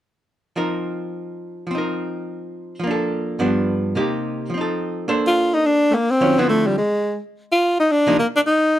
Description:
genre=jazz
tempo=213 BPM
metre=4/4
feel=swing 61% on 8ths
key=unclear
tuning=A4 = 440 Hz
part: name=archtop guitar, miked and amplified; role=accompaniment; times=0.6-8.2 s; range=G2 to C5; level=-22 LUFS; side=right 1 dB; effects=none
part: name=clear tenor saxophone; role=melody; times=5.3-8.8 s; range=G3 to F4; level=-16 LUFS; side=equal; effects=none
room=light reverb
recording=close, detailed microphones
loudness=-18 LUFS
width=side -13 dB against mid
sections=0.6-5.1 A section; 5.1-8.8 B section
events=none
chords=0.6 F7sus4; 2.8 Bbmaj7/F; 3.4 G7; 3.9 Cm7; 4.5 F7; 5.1 Bbmaj9; 6.2 Dm9; 6.8 N.C.; 7.3 Cm11

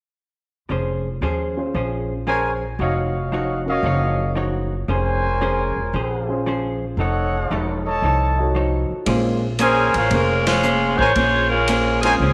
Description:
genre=jazz, big band swing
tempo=115 BPM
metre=4/4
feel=swing 68% on 8ths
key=Bb minor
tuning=A4 = 439 Hz
part: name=vintage hollow-body jazz guitar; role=accompaniment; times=0.7-12.3 s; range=F3 to Db5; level=-27 LUFS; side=equal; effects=none
part: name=upright bass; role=bass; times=0.7-12.3 s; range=E1 to Eb2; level=-26 LUFS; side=equal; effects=none
part: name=dark concert grand piano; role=accompaniment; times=1.6-12.2 s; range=Ab3 to Db5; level=-28 LUFS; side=equal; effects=none
part: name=warm trumpet section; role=stabs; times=2.3-12.1 s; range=Gb4 to A5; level=-25 LUFS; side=equal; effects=none
part: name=swinging big-band drum kit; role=drums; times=9.1-12.3 s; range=hi-hat, kick drum, ride cymbal, snare drum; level=-30 LUFS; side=equal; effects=none
part: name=bright saxophone section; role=melody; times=9.6-12.3 s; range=F3 to Db5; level=-20 LUFS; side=equal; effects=none
room=moderate echo chamber reverb, RT60 1.9 s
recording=lossy compression artefacts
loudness=-20 LUFS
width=mono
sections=0.7-9.1 A section; 9.1-12.3 B section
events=band accent 10.4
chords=0.7 Bbm9/F; 2.8 Ebm9/F; 4.9 Bbm9; 7.0 F7b9b13; 9.1 Bbm9

